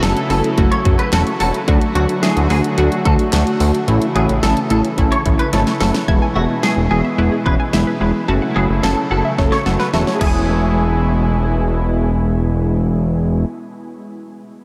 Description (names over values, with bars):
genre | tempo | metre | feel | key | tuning
synth-pop | 109 BPM | 4/4 | straight | E mixolydian | A4 = 440 Hz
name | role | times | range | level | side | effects
clean electric guitar | second line | 0.0-12.1 s | F#4 to C#5 | -25 LUFS | equal | ensemble chorus, diffuse ambient delay
funky polysynth comp | accompaniment | 0.0-13.4 s | G#3 to A4 | -23 LUFS | equal | chorus
brassy analog pad | sustained chords | 0.0-13.4 s | B2 to F#4 | -25 LUFS | equal | chorus, tremolo
fat analog bass | bass | 0.0-13.4 s | E1 to D2 | -20 LUFS | equal | none
pop drum kit | drums | 0.0-10.3 s | crash cymbal, handclaps, hi-hat, kick drum, snare drum | -23 LUFS | equal | none
analog pluck | arpeggios | 6.1-13.6 s | G#4 to G#6 | -30 LUFS | equal | chorus, phaser, diffuse ambient delay
room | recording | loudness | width
wet huge ambient reverb, RT60 8.2 s | dreamy mix soaked in reverb | -16 LUFS | mono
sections
0.0-6.1 A section; 6.1-10.5 B section; 10.5-12.7 C section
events
drum fill 5.5-6.1, 9.4-10.5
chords
0.0 F#m7; 1.7 D; 3.9 A; 6.1 E; 8.3 F#m7; 10.2 E